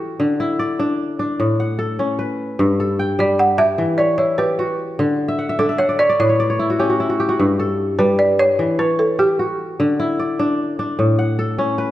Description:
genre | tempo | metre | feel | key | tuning
west african traditional | 100 BPM (dotted quarters) | 12/8 | straight | G lydian | A4 = 440 Hz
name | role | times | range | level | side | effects
kora | arpeggios | 0.0-11.9 s | G2 to G5 | -18 LUFS | left 1 dB | none
balafon | melody | 3.2-9.6 s | G4 to F#5 | -17 LUFS | right 1 dB | none
room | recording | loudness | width
wet recital hall reverb, RT60 1.6 s | none | -16 LUFS | side -14 dB against mid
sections
0.0-11.9 A section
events
kora fill 5.3-7.4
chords
0.2 D; 1.4 A; 2.6 G; 3.8 Em; 5.0 D; 6.2 A; 7.4 Gmaj7(b5, no3); 8.6 Em; 9.8 D; 11.0 A

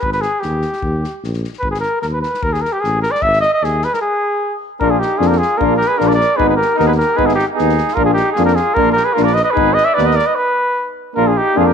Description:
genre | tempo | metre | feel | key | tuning
balkan folk, Balkan brass band | 151 BPM | 2/4 | straight | Ab hungarian minor | A4 = 440 Hz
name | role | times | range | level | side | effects
warm cornet | melody | 0.0-11.7 s | G4 to Fb5 | -16 LUFS | equal | none
dark tuba | bass | 0.0-11.7 s | Ab1 to F2 | -19 LUFS | left 1 dB | none
natural country drum kit | percussion | 0.0-10.2 s | kick drum, snare drum | -28 LUFS | left 2 dB | none
mellow trumpet | second line | 4.8-11.7 s | Eb4 to D5 | -22 LUFS | right 12 dB | none
clear euphonium | accompaniment | 4.8-11.7 s | Bb3 to Cb4 | -22 LUFS | right 13 dB | none
clear trombone | accompaniment | 4.8-11.7 s | D4 to Eb4 | -20 LUFS | left 12 dB | none
room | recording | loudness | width
moderate plate reverb, RT60 1.7 s, small room ambience | 1960s-style stereo with parts hard left and right | -13 LUFS | side -7 dB against mid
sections
0.0-4.8 A section; 4.8-11.2 B section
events
stop 4.0-4.8, 10.4-11.2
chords
0.0 Ab5; 0.8 Eb; 1.6 Ab5; 2.4 Eb5; 3.2 Ab5; 4.0 N.C.; 4.8 Bb; 6.4 Abm; 8.0 Bb; 9.6 Abm; 11.2 Bb

